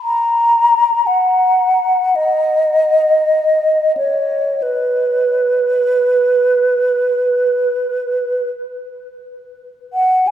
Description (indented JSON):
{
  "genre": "classical, free, expressive piece for unaccompanied flute",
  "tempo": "free time",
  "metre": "none",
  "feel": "none",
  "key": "B major",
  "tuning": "A4 = 440 Hz",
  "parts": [
    { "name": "mellow hollow concert flute", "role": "solo", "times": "0.0-10.3 s", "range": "B4 to A#5", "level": "-13 LUFS", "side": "equal", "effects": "none" }
  ],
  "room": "wet cathedral reverb, RT60 5.1 s",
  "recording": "heard from further back in the room",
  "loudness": "-13 LUFS",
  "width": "side -10 dB against mid",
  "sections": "0.0-9.9 A section",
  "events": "none",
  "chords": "none"
}